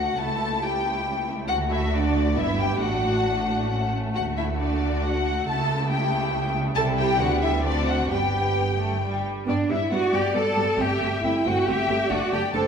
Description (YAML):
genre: quick classical-period movement for string orchestra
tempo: 137 BPM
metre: 3/4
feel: rubato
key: D major, G major from 6.8 s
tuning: A4 = 440 Hz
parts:
  - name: warm symphonic violin section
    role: melody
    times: 0.0-12.6 s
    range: D5 to A5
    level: -27 LUFS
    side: left 4 dB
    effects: none
  - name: rich studio violin section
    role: second line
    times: 0.0-12.7 s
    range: G3 to G5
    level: -29 LUFS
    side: left 2 dB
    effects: none
  - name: rich studio viola section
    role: accompaniment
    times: 0.0-12.6 s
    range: G3 to A4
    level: -29 LUFS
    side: right 2 dB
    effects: none
  - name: rich studio cello section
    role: bass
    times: 0.0-12.7 s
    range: C#2 to A4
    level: -27 LUFS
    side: right 2 dB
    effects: none
  - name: rich studio double bass section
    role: bass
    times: 0.0-12.6 s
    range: F#1 to G2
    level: -29 LUFS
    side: right 2 dB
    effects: none
room: wet recital hall reverb, RT60 1.7 s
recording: recorded in a church or concert hall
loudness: -21 LUFS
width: side -7 dB against mid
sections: 0.0-9.5 A section; 9.5-12.7 B section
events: none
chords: 0.2 A7/C#; 1.5 D; 2.4 Em/G; 2.8 D/A; 4.2 D; 5.5 A7/C#; 6.8 Am7/C; 7.2 G/D; 7.6 D7; 8.1 G; 10.8 Am7/G; 12.1 D7/F#